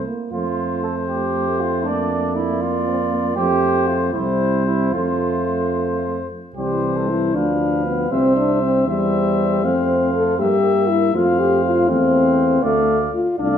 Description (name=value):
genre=classical, brass quintet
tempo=79 BPM (dotted quarters)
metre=6/8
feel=rubato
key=F major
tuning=A4 = 442 Hz
part: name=clear trumpet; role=melody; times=0.0-13.6 s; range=C5 to F5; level=-25 LUFS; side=left 7 dB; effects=none
part: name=mellow flugelhorn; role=second line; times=0.0-13.6 s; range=D4 to D5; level=-24 LUFS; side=right 6 dB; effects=none
part: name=mellow trombone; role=accompaniment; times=0.0-13.6 s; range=E3 to Bb3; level=-26 LUFS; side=right 3 dB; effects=none
part: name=mellow tuba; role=bass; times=0.0-13.6 s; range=C2 to G2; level=-24 LUFS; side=right 4 dB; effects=none
part: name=warm French horn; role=accompaniment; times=1.1-13.6 s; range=G3 to A4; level=-20 LUFS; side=left 3 dB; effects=none
room=wet recital hall reverb, RT60 1.3 s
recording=minimal, uncompressed stereo recording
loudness=-16 LUFS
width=side -8 dB against mid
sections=0.0-6.6 A section; 6.6-13.6 B section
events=none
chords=0.3 F; 1.9 Bb/F; 3.4 F; 4.1 C; 4.9 F; 6.6 C; 7.3 Bdim/D; 8.1 C; 9.6 F; 10.4 Edim/G; 11.1 F; 12.6 Dm